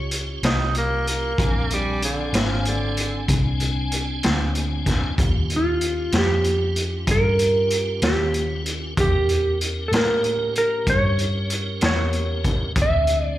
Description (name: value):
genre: slow blues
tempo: 63 BPM (dotted quarters)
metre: 12/8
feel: straight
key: unclear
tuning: A4 = 440 Hz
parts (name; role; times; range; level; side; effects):
- clean lap steel guitar; melody; 0.0-13.4 s; F4 to E5; -22 LUFS; right 1 dB; slapback echo
- tonewheel organ; sustained chords; 0.0-13.4 s; Ab3 to Ab5; -30 LUFS; equal; slow rotary speaker, chorus vibrato
- vintage muted fingered electric bass; bass; 0.0-13.4 s; Ab1 to A2; -24 LUFS; equal; none
- raw garage drum kit; drums; 0.1-13.2 s; hi-hat, kick drum, snare drum; -24 LUFS; equal; none
- growling tenor saxophone; second line; 0.5-3.3 s; D3 to Eb4; -26 LUFS; right 2 dB; slapback echo
room: small room ambience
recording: live gig heard through the venue's PA, club reverb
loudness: -19 LUFS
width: side -14 dB against mid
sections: 0.0-13.4 A section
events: none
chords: 0.0 Eb9; 1.4 Bb9; 5.2 Eb9; 9.0 Edim7; 12.8 Bb9 (rootless)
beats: 0.42 | 1.37 2.32 3.27 4.22 | 5.17 6.12 7.07 8.02 | 8.97 9.92 10.86 11.81 | 12.76